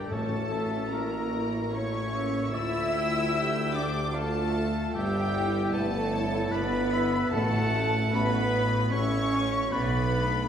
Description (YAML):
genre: classical, slow romantic movement for symphony orchestra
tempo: 75 BPM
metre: 3/4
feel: rubato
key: D minor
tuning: A4 = 440 Hz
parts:
  - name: rich studio violin section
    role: melody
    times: 0.0-10.5 s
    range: G5 to E6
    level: -35 LUFS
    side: left 5 dB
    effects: none
  - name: bright clarinet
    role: second line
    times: 0.0-10.5 s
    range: B4 to G5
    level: -37 LUFS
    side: equal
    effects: none
  - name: mellow silver concert flute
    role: second line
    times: 0.0-10.5 s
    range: G5 to E6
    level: -36 LUFS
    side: left 2 dB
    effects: none
  - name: warm chamber violin section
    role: second line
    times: 0.0-10.5 s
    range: G4 to E5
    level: -36 LUFS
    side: right 1 dB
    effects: none
  - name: warm oboe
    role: second line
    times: 0.0-10.5 s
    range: G4 to E5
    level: -37 LUFS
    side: equal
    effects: none
  - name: dark studio viola section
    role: accompaniment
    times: 0.0-10.5 s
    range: A3 to A4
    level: -34 LUFS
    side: equal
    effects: none
  - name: mellow French horn section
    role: sustained chords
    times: 0.0-10.5 s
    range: G3 to E4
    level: -34 LUFS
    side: left 2 dB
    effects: none
  - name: clear tuba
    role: bass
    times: 0.0-10.4 s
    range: G1 to D2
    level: -36 LUFS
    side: right 2 dB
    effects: none
  - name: rich symphonic double bass section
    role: bass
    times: 0.0-10.5 s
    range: G1 to D2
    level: -33 LUFS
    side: right 1 dB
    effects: none
  - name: warm symphonic cello section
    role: bass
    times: 0.0-10.5 s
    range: G3 to E4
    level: -34 LUFS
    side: right 2 dB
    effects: none
  - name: timpani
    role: percussion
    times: 0.1-1.3, 7.3-8.5 s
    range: A2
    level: -38 LUFS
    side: left 1 dB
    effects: none
room: wet scoring stage reverb, RT60 1.5 s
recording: heard from further back in the room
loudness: -25 LUFS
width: side -8 dB against mid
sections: 0.0-10.5 A section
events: none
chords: 0.1 A; 2.5 Dm; 5.0 Em/G; 7.3 A; 9.7 Bm7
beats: | 0.10 0.92 1.74 | 2.54 3.35 4.15 | 4.95 5.74 6.53 | 7.33 8.13 8.94 | 9.73